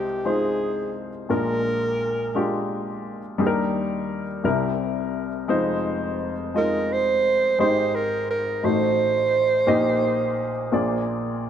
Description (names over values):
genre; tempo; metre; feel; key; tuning
gospel; 57 BPM (dotted quarters); 6/8; straight; Eb major; A4 = 439 Hz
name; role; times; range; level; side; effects
mellow alto saxophone; melody; 0.0-2.7, 6.6-11.1 s; G4 to C5; -22 LUFS; right 3 dB; none
warm upright piano; accompaniment; 0.0-11.5 s; F1 to Eb5; -23 LUFS; left 2 dB; none
room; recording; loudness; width
moderate plate reverb, RT60 2.6 s; none; -21 LUFS; side -9 dB against mid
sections
0.0-11.5 A section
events
none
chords
0.0 Fm7/C; 1.3 Bb7; 3.4 Ebmaj7; 4.4 C7; 5.5 Fm7; 7.6 Abmaj7; 8.6 Adim7; 9.7 Eb/Bb; 10.7 Bb7